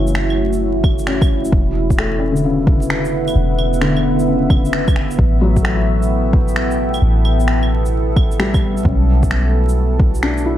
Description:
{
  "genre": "future garage",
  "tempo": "131 BPM",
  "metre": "4/4",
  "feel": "swing 65% on 16ths",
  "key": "E dorian",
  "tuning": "A4 = 440 Hz",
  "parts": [
    { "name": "felt-muted upright piano", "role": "accompaniment", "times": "0.0-10.6 s", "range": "C#3 to E4", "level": "-22 LUFS", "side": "left 3 dB", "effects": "sidechain pumping, tape echo" },
    { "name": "deep dark ambient pad", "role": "sustained chords", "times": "0.0-10.6 s", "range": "A3 to G5", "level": "-20 LUFS", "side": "right 2 dB", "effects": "chorus, built-in reverb, sidechain pumping" },
    { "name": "soft 808-style bass", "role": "bass", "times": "0.0-10.6 s", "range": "E1 to B1", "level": "-18 LUFS", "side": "equal", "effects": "sidechain pumping" },
    { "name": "electronic shaker, finger snaps and claves", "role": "drums", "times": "0.1-10.4 s", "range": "none", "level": "-24 LUFS", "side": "right 1 dB", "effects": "overdrive" },
    { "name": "electronic kick drum", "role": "drums", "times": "0.8-10.1 s", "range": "none", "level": "-15 LUFS", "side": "equal", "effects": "overdrive" }
  ],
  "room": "digital ambience",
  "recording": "dark, warm production, vinyl crackle",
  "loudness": "-13 LUFS",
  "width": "side -12 dB against mid",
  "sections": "0.0-10.6 A section",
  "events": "none",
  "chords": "0.0 F#m7; 1.5 Esus2; 5.2 Asus2; 8.9 Bm11"
}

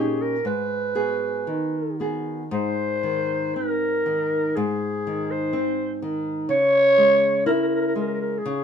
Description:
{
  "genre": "fado",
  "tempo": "57-64 BPM",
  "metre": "2/4",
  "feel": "rubato",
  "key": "Ab major",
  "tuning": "A4 = 440 Hz",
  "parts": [
    { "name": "growling clarinet", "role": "melody", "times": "0.0-8.6 s", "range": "Ab4 to Db5", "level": "-22 LUFS", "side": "equal", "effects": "none" },
    { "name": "nylon-string guitar", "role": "accompaniment", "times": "0.0-8.6 s", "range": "G#2 to G#4", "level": "-25 LUFS", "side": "equal", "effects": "none" }
  ],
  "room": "light reverb",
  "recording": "minimal, uncompressed stereo recording",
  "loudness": "-20 LUFS",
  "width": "side -7 dB against mid",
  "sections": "0.0-2.5 A section; 2.5-8.6 B section",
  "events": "none",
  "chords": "0.5 G#m7; 2.5 Ab; 6.5 Dbm"
}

